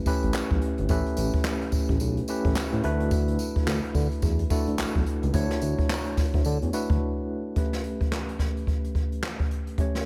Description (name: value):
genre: R&B, new jack swing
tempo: 108 BPM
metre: 4/4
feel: swing 61% on 16ths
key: D major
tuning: A4 = 440 Hz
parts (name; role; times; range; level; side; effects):
- tine electric piano; accompaniment; 0.0-10.1 s; A3 to C#5; -32 LUFS; equal; medium tremolo
- jazz brush drum kit; drums; 0.1-10.1 s; handclaps, hi-hat, kick drum, snare drum, tambourine; -29 LUFS; equal; none
- smooth synth bass; bass; 0.2-7.0 s; G1 to D3; -30 LUFS; equal; none
room: small room ambience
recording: none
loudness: -26 LUFS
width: mono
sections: 0.0-7.6 A section; 7.6-10.1 B section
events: break 7.0-7.6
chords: 0.0 A9; 2.8 D69; 7.6 A9